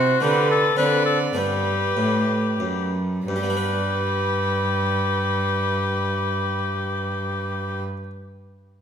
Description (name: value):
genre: classical, baroque-style sonata movement with continuo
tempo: 87-114 BPM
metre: 3/4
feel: straight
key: G major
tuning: A4 = 436 Hz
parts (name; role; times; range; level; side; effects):
- clear oboe; melody; 0.0-7.8 s; F#4 to B4; -25 LUFS; left 7 dB; none
- warm violin; second line; 0.0-7.8 s; B4 to D5; -26 LUFS; right 5 dB; none
- harpsichord; accompaniment; 0.0-8.1 s; F#2 to B4; -26 LUFS; left 1 dB; none
- rich cello; bass; 0.0-7.8 s; F#2 to D3; -26 LUFS; right 2 dB; none
room: wet recital hall reverb, RT60 1.6 s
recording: none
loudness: -20 LUFS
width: side -8 dB against mid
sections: 0.0-3.3 A section; 3.3-7.4 B section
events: slowing down 0.0-3.3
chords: 0.2 G/D; 0.8 D5; 1.4 G